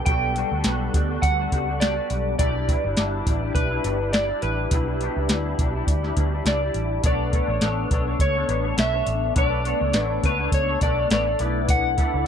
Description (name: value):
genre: indie pop, bedroom pop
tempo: 103 BPM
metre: 4/4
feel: swing 55% on 16ths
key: B minor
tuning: A4 = 438 Hz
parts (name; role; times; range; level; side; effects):
- electric slide guitar; melody; 0.0-12.3 s; B4 to G5; -26 LUFS; equal; wide subtle chorus, slapback echo
- electric guitar through a small old amp; accompaniment; 0.0-12.3 s; B2 to D5; -29 LUFS; left 3 dB; ensemble chorus, vibrato effect
- warm analog pad; sustained chords; 0.0-12.3 s; G3 to A4; -31 LUFS; left 2 dB; chorus
- vintage muted picked electric bass; bass; 0.1-12.2 s; G1 to D2; -26 LUFS; equal; none
- soft vintage rhythm box; drums; 0.1-12.1 s; hi-hat, kick drum, snare drum; -23 LUFS; equal; none
room: little or no reverb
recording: dry, close 1970s-style studio recording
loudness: -20 LUFS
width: side -8 dB against mid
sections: 0.0-7.0 A section; 7.0-12.3 A section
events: none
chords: 0.0 Gmaj7; 2.4 Em7; 7.0 Bm9; 11.4 E7sus4/B